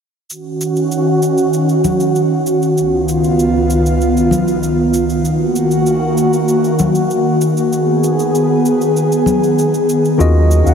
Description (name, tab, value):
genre	sunset chillout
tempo	97 BPM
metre	4/4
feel	straight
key	unclear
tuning	A4 = 440 Hz
part	airy breathy pad	sustained chords	0.4-10.7 s	C#2 to G#4	-12 LUFS	equal	chorus
part	cabasa	drums	0.3-10.7 s	none	-30 LUFS	right 1 dB	none
part	congas	percussion	1.8-9.4 s	none	-22 LUFS	left 4 dB	none
part	tine electric piano	accompaniment	10.2-10.7 s	D#3 to F#5	-15 LUFS	left 2 dB	medium tremolo, auto-pan, diffuse ambient delay
part	warm sub bass	bass	10.2-10.7 s	D#2	-10 LUFS	equal	none
room	wet huge ambient reverb, RT60 7.8 s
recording	dreamy mix soaked in reverb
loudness	-12 LUFS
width	side -7 dB against mid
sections	0.3-10.7 A section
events	filter sweep on analog synth pad 0.3-10.7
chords	0.3 D#m7; 2.8 C#9; 5.2 F#6; 7.7 B6; 10.2 D#m7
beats	| 0.30 0.92 1.54 2.16 | 2.78 3.39 4.01 4.63 | 5.25 5.87 6.49 7.11 | 7.72 8.34 8.96 9.58 | 10.20